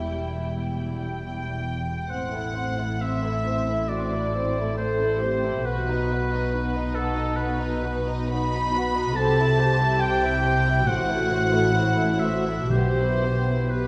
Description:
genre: classical, slow romantic movement for symphony orchestra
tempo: 68 BPM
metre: 4/4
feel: uneven beats, rubato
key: unclear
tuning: A4 = 439 Hz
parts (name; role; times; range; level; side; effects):
- warm studio violin section; melody; 0.0-13.9 s; A4 to B5; -34 LUFS; equal; none
- warm studio violin section; second line; 0.0-13.9 s; B3 to E5; -34 LUFS; equal; none
- dark studio viola section; accompaniment; 0.0-13.9 s; G3 to A4; -32 LUFS; equal; none
- dark studio cello section; bass; 0.0-13.9 s; E2 to C3; -31 LUFS; equal; none
- dark studio double bass section; bass; 0.0-13.9 s; E1 to C2; -31 LUFS; equal; none
- clear oboe; second line; 1.0-13.9 s; A4 to B5; -31 LUFS; equal; none
- timpani; percussion; 12.7-13.9 s; B2; -31 LUFS; equal; none
room: wet concert hall reverb, RT60 2.5 s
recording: dark, warm production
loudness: -24 LUFS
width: mono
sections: 0.0-2.1 A section; 2.1-13.9 B section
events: none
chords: 0.0 Em; 2.1 Am; 5.7 B; 9.2 C; 10.9 F#m7b5/A; 12.7 Em/B

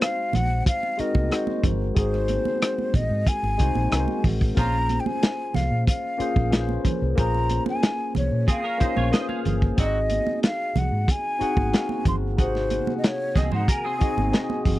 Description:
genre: lush 1970s-style soul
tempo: 92 BPM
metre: 4/4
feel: straight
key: unclear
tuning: A4 = 440 Hz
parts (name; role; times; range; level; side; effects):
- breathy mellow concert flute; melody; 0.0-14.6 s; C5 to C6; -27 LUFS; left 1 dB; none
- barky tine electric piano; accompaniment; 0.0-14.8 s; C3 to Gb5; -28 LUFS; left 2 dB; phaser
- warm soul drum kit; drums; 0.0-14.8 s; hi-hat, kick drum, rim click, snare drum; -21 LUFS; equal; none
- congas; percussion; 0.0-14.8 s; none; -31 LUFS; right 6 dB; none
- vintage muted fingered electric bass; bass; 0.3-14.8 s; G1 to Bb2; -25 LUFS; equal; none
- warm horn section; stabs; 4.6-4.8, 9.8-10.0 s; F3 to Gb4; -32 LUFS; right 4 dB; none
- semi-hollow electric guitar; riff; 8.5-14.8 s; C4 to F5; -32 LUFS; right 3 dB; ensemble chorus
room: little or no reverb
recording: dry, close 1970s-style studio recording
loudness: -21 LUFS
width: side -16 dB against mid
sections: 0.0-14.8 A section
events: none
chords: 0.0 Ab7; 4.6 Bbm9; 9.8 Ab7

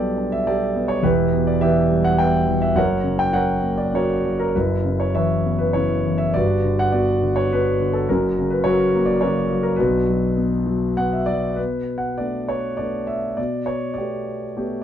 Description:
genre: classical, lyrical solo piano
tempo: 103 BPM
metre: 3/4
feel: rubato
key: B minor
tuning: A4 = 440 Hz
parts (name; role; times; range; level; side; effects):
- warm concert grand piano; solo; 0.0-14.8 s; E1 to G5; -18 LUFS; equal; none
room: moderate studio ambience, RT60 0.5 s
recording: dark, warm production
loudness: -18 LUFS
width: side -9 dB against mid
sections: 0.0-11.6 A section; 11.6-14.8 B section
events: grand piano fill 10.7-11.6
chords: 0.0 Gadd9/B; 1.0 Em; 2.8 F#; 4.5 F#7sus4; 6.3 Gmaj7; 8.1 F#; 9.8 Bm; 11.6 Bm7; 13.4 Gadd9/B

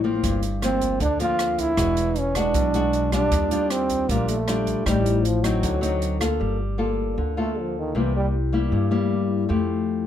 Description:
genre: bossa nova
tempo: 156 BPM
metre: 4/4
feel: straight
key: G minor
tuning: A4 = 441 Hz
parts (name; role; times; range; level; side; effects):
- nylon-string guitar; accompaniment; 0.0-10.1 s; G2 to A4; -24 LUFS; left 3 dB; none
- upright bass; bass; 0.0-10.1 s; E1 to G2; -26 LUFS; right 1 dB; none
- open jazz drum kit; drums; 0.2-6.3 s; hi-hat, kick drum, rim click; -30 LUFS; right 1 dB; none
- warm trombone; melody; 0.6-8.3 s; Eb3 to F4; -24 LUFS; right 2 dB; plate reverb
room: light reverb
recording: none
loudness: -20 LUFS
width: side -10 dB against mid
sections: 0.0-6.4 A section; 6.4-10.1 B section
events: trombone solo 6.4-10.1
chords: 0.2 Gm7; 1.8 E9; 3.3 Ebmaj9; 4.9 Am7b5; 5.6 D7b9; 6.4 Gm9; 7.9 C7; 9.5 Fmaj9

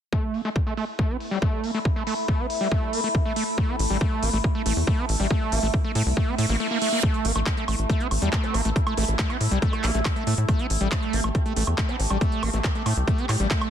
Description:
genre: psychedelic trance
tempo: 139 BPM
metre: 4/4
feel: straight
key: A phrygian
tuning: A4 = 440 Hz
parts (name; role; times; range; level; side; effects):
- overtone-sweeping drone; sustained chords; 0.9-13.7 s; A3 to G4; -30 LUFS; equal; chorus, built-in reverb, phaser, sidechain pumping
- screaming distorted acid line; riff; 0.1-13.7 s; G3 to C4; -29 LUFS; moving between left 3 dB and right 4 dB; distortion, chorus, auto-pan, sidechain pumping, dub echo
- electronic kick drum; drums; 0.1-13.6 s; none; -24 LUFS; equal; none
- techno drum kit; drums; 0.3-13.7 s; handclaps, hi-hat, woodblock; -30 LUFS; right 1 dB; low-pass filter on hats, low-pass filter on perc, low-pass filter on snare, low-pass filter on room
- tight sequencer bass; bass; 3.8-13.5 s; A1 to A2; -24 LUFS; equal; none
- reverse cymbal; sound effects; 6.4-7.0 s; none; -31 LUFS; right 6 dB; none
- vowel-sweep wobble bass; second line; 8.4-12.6 s; G3 to C4; -40 LUFS; left 3 dB; chorus, sidechain pumping, high-pass filter, dub echo
room: light reverb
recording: dense, heavily limited modern master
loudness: -22 LUFS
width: side -9 dB against mid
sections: 0.1-7.0 A section; 7.0-13.7 B section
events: filter sweep on acid bass 0.1-7.0; reverse cymbal 6.4-7.0; kick drops out 6.6-7.0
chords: 0.1 A5

